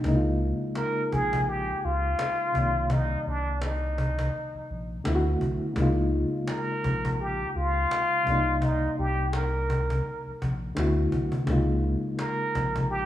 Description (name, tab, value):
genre	lo-fi hip hop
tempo	84 BPM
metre	4/4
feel	swing 57% on 16ths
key	unclear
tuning	A4 = 438 Hz
part	reed electric piano	accompaniment	0.0-13.1 s	C3 to D5	-29 LUFS	left 1 dB	overdrive, medium tremolo, cassette tape
part	warm sub bass	bass	0.0-13.1 s	Bb1 to D2	-29 LUFS	equal	none
part	cajon	drums	0.0-13.0 s	none	-32 LUFS	equal	none
part	trumpet with plunger mute	melody	0.8-13.1 s	D4 to Bb4	-28 LUFS	equal	tape echo
room	moderate lush hall reverb, RT60 2.1 s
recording	rough home demo mix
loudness	-24 LUFS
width	side -12 dB against mid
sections	0.0-13.1 A section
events	break 0.0-11.5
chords	0.0 Db69; 2.5 Cm9; 5.0 D69; 5.8 Db69; 8.3 Cm9; 10.8 D69; 11.5 Db69